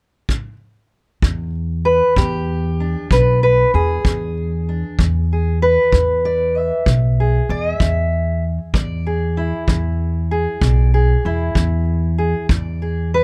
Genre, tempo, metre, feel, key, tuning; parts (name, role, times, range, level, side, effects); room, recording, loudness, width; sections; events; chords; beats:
acoustic country blues, solo or duo; 64 BPM (dotted quarters); 12/8; straight; E mixolydian; A4 = 440 Hz
kick drum; drums; 0.3-12.6 s; -22 LUFS; equal
fingerpicked steel-string acoustic guitar; melody; 1.2-13.2 s; E2 to E5; -21 LUFS; equal
upright bass; bass; 1.2-13.2 s; B1 to E2; -20 LUFS; equal
little or no reverb; dark, warm production; -18 LUFS; mono
0.0-1.2 A section; 1.2-13.2 B section
0.0 N.C.; 1.2 E7
0.29 | 1.23 2.17 3.11 4.05 | 4.99 5.93 6.87 7.80 | 8.74 9.68 10.62 11.56 | 12.50